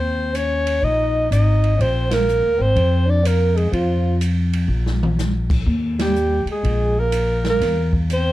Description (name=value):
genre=jazz, small-group swing and bop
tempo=124 BPM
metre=4/4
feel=swing 66% on 8ths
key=unclear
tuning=A4 = 440 Hz
part: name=breathy alto saxophone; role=melody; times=0.0-8.3 s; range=F4 to Eb5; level=-21 LUFS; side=left 1 dB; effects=none
part: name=trombone with cup mute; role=second line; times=0.0-8.3 s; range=F3 to Eb4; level=-25 LUFS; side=right 4 dB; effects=none
part: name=upright bass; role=bass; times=0.0-8.3 s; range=Ab1 to F2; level=-19 LUFS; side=equal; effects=none
part: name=open jazz drum kit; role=drums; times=0.3-8.2 s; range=crash cymbal, hi-hat, kick drum, ride cymbal, snare drum, toms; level=-26 LUFS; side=equal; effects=none
room=light reverb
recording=dark, warm production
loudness=-16 LUFS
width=side -15 dB against mid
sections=0.0-8.3 A section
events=band accent 2.0, 5.9; drum fill 4.7-5.2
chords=0.0 Eb5; 1.8 Bb5; 3.7 N.C.; 5.7 Eb; 7.6 Dbm6/Fb (rootless)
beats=0.33 0.82 1.30 | 1.79 2.27 2.76 3.24 | 3.73 4.21 4.70 5.18 | 5.67 6.15 6.64 7.12 | 7.61 8.10